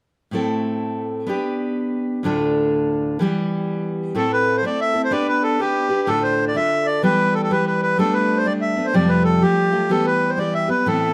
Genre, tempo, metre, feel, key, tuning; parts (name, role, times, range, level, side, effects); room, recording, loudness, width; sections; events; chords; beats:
celtic folk, Celtic polka; 125 BPM; 2/4; swing 63% on 8ths; A minor; A4 = 442 Hz
picked steel-string acoustic guitar; accompaniment; 0.3-11.1 s; D2 to B4; -22 LUFS; equal
accordion; melody; 4.2-11.1 s; G4 to E5; -22 LUFS; equal
moderate studio reverb, RT60 0.6 s; -20 LUFS; mono
0.3-4.2 A section; 4.2-11.1 B section
0.3 Am; 1.3 G/B; 2.2 Dm; 3.2 Em; 4.2 Am; 5.1 G/B; 6.1 Dm; 7.0 Em; 8.0 Gadd9; 8.9 Fadd9; 9.9 Em
| 0.33 0.80 | 1.28 1.76 | 2.24 2.72 | 3.20 3.68 | 4.16 4.63 | 5.11 5.59 | 6.07 6.55 | 7.03 7.51 | 7.99 8.47 | 8.95 9.43 | 9.91 10.38 | 10.86